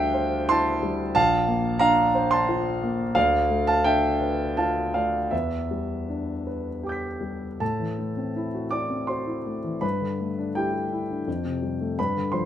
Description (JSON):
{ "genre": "classical, impressionist solo piano", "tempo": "77-95 BPM", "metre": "3/4", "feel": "rubato", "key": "A minor from 3.2 s", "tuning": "A4 = 441 Hz", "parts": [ { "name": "warm concert grand piano", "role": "solo", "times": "0.0-12.5 s", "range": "Bb1 to B6", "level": "-22 LUFS", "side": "equal", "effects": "none" } ], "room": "moderate large studio reverb, RT60 0.8 s", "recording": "none", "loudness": "-22 LUFS", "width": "side -10 dB against mid", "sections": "0.0-7.6 A section; 7.6-12.5 B section", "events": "none", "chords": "0.0 Dm11; 1.2 Bbmaj9; 3.2 Dm6; 5.3 Em7; 7.6 Am6; 9.8 G69; 11.3 Fadd9" }